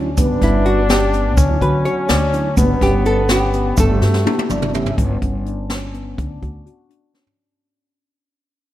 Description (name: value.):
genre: progressive instrumental, band music in an uneven meter.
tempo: 250 BPM (eighths).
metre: 5/8.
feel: straight.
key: G lydian.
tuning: A4 = 440 Hz.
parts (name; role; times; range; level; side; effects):
archtop guitar, miked and amplified; melody; 0.0-4.7 s; E4 to D5; -22 LUFS; right 1 dB; none.
mellow tonewheel organ; accompaniment; 0.0-5.0 s; D3 to E5; -24 LUFS; right 4 dB; fast rotary speaker.
handpan; arpeggios; 0.0-7.3 s; B3 to F#4; -25 LUFS; left 2 dB; digital delay.
upright bass; bass; 0.0-6.6 s; G1 to D3; -19 LUFS; equal; none.
warm flugelhorn; second line; 0.2-4.7 s; A3 to D4; -22 LUFS; left 3 dB; none.
jazz brush drum kit; drums; 0.2-7.4 s; hi-hat, kick drum, snare drum, toms; -20 LUFS; equal; none.
egg shaker; percussion; 0.2-4.9 s; none; -33 LUFS; right 7 dB; none.
room: light reverb, small room ambience.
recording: rough home demo mix.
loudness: -14 LUFS.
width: side -13 dB against mid.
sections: 0.0-5.0 A section; 5.0-7.4 B section.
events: drum fill 4.0-5.0, 7.1; tonewheel organ fill 4.3-5.0; fade-out 5.0-7.4.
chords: 0.2 G; 1.4 Dadd9; 2.6 G; 3.8 Gadd9; 5.0 G; 6.2 D.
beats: | 0.17 0.41 0.66 0.90 1.14 | 1.38 1.62 1.86 2.10 2.34 | 2.58 2.82 3.06 3.30 3.54 | 3.78 4.02 4.26 4.50 4.74 | 4.98 5.22 5.46 5.70 5.94 | 6.18 6.42 6.67 6.91 7.15.